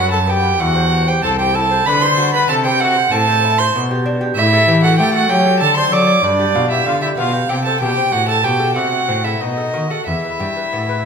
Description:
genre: classical, baroque-style sonata movement with continuo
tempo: 95 BPM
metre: 3/4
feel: rubato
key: unclear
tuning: A4 = 440 Hz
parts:
  - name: clear trumpet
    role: melody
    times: 0.0-11.1 s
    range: D4 to D5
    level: -21 LUFS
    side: left 8 dB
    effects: none
  - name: rich violin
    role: second line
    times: 0.0-11.1 s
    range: D5 to D6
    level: -16 LUFS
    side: right 5 dB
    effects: none
  - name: lute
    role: accompaniment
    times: 0.0-11.1 s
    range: E2 to D5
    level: -22 LUFS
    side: left 1 dB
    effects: none
  - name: rich cello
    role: bass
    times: 0.0-11.1 s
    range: C2 to A3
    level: -19 LUFS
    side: equal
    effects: none
room: wet recital hall reverb, RT60 1.7 s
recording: minimal, uncompressed stereo recording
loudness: -13 LUFS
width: side -6 dB against mid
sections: 0.0-11.1 A section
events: none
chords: 0.0 B5; 0.6 C/E; 1.9 Bm/D; 2.5 Am/C; 3.8 G/B; 4.4 A7; 5.6 D; 6.2 G7; 7.5 C5; 8.1 F#dim/A; 9.4 B7; 10.1 Em

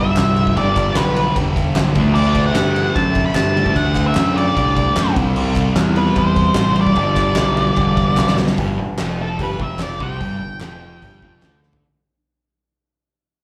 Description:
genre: garage rock duo or trio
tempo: 150 BPM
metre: 4/4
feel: straight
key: G major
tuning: A4 = 435 Hz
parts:
  - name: octave-fuzz lead guitar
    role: melody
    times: 0.0-11.6 s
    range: A4 to B5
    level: -23 LUFS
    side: equal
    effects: distortion, slapback echo
  - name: fuzz guitar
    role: riff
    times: 0.0-11.8 s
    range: F2 to D4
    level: -21 LUFS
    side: equal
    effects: distortion, slapback echo
  - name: growling picked electric bass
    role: bass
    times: 0.0-11.8 s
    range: E1 to G2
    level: -23 LUFS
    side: equal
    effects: overdrive
  - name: oversized low-tuned drum kit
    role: drums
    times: 0.2-11.8 s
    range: crash cymbal, hi-hat, kick drum, ride cymbal, snare drum, toms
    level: -24 LUFS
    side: equal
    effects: none
  - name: group handclap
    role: percussion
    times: 0.2-11.5 s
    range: none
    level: -34 LUFS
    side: equal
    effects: none
room: small room ambience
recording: live gig heard through the venue's PA, club reverb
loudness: -17 LUFS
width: mono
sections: 0.0-8.6 A section; 8.6-11.8 B section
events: drum fill 8.2-8.6, 11.6; fade-out 8.6-11.8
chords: 0.0 G; 2.0 D; 5.2 C; 7.0 G; 8.6 G5

